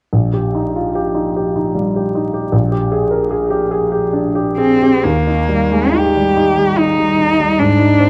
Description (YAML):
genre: classical, romantic duo for cello and grand piano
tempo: 64-79 BPM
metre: 3/4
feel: rubato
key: Eb major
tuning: A4 = 440 Hz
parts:
  - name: warm grand piano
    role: accompaniment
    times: 0.1-8.1 s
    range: Bb1 to Bb4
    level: -17 LUFS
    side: equal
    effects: none
  - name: warm cello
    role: melody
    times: 4.6-8.1 s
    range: Bb3 to G4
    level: -16 LUFS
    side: equal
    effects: none
room: moderate recital hall reverb, RT60 1.4 s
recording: close, detailed microphones, vinyl crackle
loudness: -15 LUFS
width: mono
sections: 0.1-5.0 A section; 5.0-8.1 B section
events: none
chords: 0.1 Eb/Bb; 2.5 Bb6; 5.0 Eb